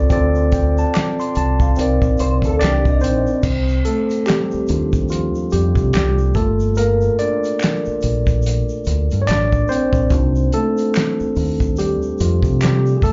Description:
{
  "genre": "R&B, neo-soul",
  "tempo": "72 BPM",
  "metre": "4/4",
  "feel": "swing 61% on 16ths",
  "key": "C dorian",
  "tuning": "A4 = 440 Hz",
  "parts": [
    { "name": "tine electric piano", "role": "accompaniment", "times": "0.0-13.1 s", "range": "F3 to D6", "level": "-21 LUFS", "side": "equal", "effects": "slapback echo" },
    { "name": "deep dub fingered electric bass", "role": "bass", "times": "0.0-13.1 s", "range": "G1 to C3", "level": "-20 LUFS", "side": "equal", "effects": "none" },
    { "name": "warm soul drum kit", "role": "drums", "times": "0.1-13.1 s", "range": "crash cymbal, handclaps, hi-hat, kick drum, snare drum", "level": "-23 LUFS", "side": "equal", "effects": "none" },
    { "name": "egg shaker and finger snaps", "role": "percussion", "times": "0.1-13.1 s", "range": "none", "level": "-37 LUFS", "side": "equal", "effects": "slapback echo" },
    { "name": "electric guitar through a small old amp", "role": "second line", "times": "2.2-3.4 s", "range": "Eb4 to C5", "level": "-27 LUFS", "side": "equal", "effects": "ensemble chorus, slapback echo" }
  ],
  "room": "little or no reverb",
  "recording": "live gig heard through the venue's PA, club reverb, nothing above 7.5 kHz",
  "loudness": "-18 LUFS",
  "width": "mono",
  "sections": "0.0-3.4 A section; 3.4-13.1 B section",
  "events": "tine electric piano solo 3.4-13.1",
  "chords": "0.1 Dm7; 1.8 Cm9; 3.4 Cm11; 6.4 Gm9; 10.1 Cm11"
}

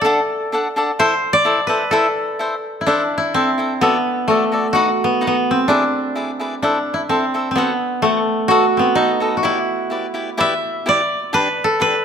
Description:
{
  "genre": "mexican folk, mariachi",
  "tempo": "128 BPM",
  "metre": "2/4",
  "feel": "straight",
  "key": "E minor",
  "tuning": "A4 = 440 Hz",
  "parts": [
    { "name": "koto", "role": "melody", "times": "0.0-12.0 s", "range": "A3 to E5", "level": "-17 LUFS", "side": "equal", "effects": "none" },
    { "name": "cavaquinho", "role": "accompaniment", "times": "0.0-11.9 s", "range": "D4 to F#5", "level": "-21 LUFS", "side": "left 1 dB", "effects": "none" }
  ],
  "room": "moderate recital hall reverb, RT60 1.7 s",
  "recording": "close, detailed microphones",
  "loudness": "-15 LUFS",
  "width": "side -7 dB against mid",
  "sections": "0.0-2.9 A section; 2.9-10.4 B section; 10.4-12.0 C section",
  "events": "none",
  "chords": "0.0 D; 1.0 Am; 3.8 Dadd9; 4.7 B; 5.7 E7; 6.6 Am; 7.6 F#dim; 8.5 B7; 9.4 Em7; 11.3 G"
}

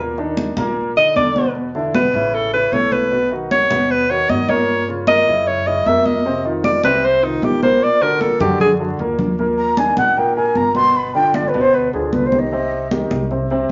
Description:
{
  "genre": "Afro-Cuban jazz",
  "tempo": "153 BPM",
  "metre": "4/4",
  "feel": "straight",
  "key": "unclear",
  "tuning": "A4 = 444 Hz",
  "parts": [
    { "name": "warm concert grand piano", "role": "accompaniment", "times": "0.0-13.7 s", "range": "A2 to C5", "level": "-23 LUFS", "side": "equal", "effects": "none" },
    { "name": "upright bass", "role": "bass", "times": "0.0-13.7 s", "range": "G1 to G2", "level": "-32 LUFS", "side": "equal", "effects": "none" },
    { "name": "congas", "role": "percussion", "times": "0.2-13.7 s", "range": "none", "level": "-25 LUFS", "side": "equal", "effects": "none" },
    { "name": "clear alto saxophone", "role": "melody", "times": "1.0-8.7 s", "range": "Eb4 to Fb5", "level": "-18 LUFS", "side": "equal", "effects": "none" },
    { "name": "mellow silver concert flute", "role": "second line", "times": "9.6-13.0 s", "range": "Ab4 to C6", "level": "-19 LUFS", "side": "equal", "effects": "none" }
  ],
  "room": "wet club reverb, RT60 0.8 s",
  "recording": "vinyl crackle, nothing above 7.5 kHz",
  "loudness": "-17 LUFS",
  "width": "mono",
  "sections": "0.0-9.4 A section; 9.4-13.7 A section",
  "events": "alto saxophone solo 0.0-9.4; drum fill 8.2-9.4; flute solo 9.4-13.7",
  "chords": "0.0 Eb5; 1.6 E5; 2.3 Aadd9; 3.1 Bmaj9; 4.7 Gm7b5; 5.5 Gb7; 6.3 F5; 7.8 Bbaug; 9.4 Ebmaj7; 11.0 G7; 12.5 Cm"
}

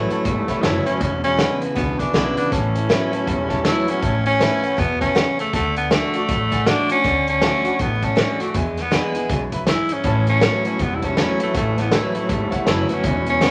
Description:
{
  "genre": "rockabilly",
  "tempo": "160 BPM",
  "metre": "4/4",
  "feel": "swing 61% on 8ths",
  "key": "A major",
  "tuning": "A4 = 439 Hz",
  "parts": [
    { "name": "raspy tenor saxophone", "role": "melody", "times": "0.0-13.5 s", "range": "G#3 to E4", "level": "-24 LUFS", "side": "equal", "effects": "none" },
    { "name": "picked swing-style acoustic guitar", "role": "accompaniment", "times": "0.0-13.5 s", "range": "E2 to F#4", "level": "-28 LUFS", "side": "equal", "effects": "none" },
    { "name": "electric guitar through a small old amp", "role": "riff", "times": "0.0-4.0, 10.0-13.5 s", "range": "E2 to G3", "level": "-28 LUFS", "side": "equal", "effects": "tremolo" },
    { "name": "upright bass", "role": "bass", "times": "0.0-13.5 s", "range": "E1 to E2", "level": "-29 LUFS", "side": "equal", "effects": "none" },
    { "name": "warm upright piano", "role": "accompaniment", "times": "0.1-13.5 s", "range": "B4 to B5", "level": "-33 LUFS", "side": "equal", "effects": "none" },
    { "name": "vintage drum kit", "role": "drums", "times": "0.1-13.5 s", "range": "hi-hat, kick drum, snare drum", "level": "-25 LUFS", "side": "equal", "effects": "none" }
  ],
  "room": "wet large studio reverb, RT60 0.8 s",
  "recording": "vinyl crackle",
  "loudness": "-20 LUFS",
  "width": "mono",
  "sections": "0.0-4.0 A section; 4.0-13.5 A section",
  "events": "none",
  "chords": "0.0 A; 1.0 E7; 2.5 A; 5.5 D; 8.5 E7; 10.0 A"
}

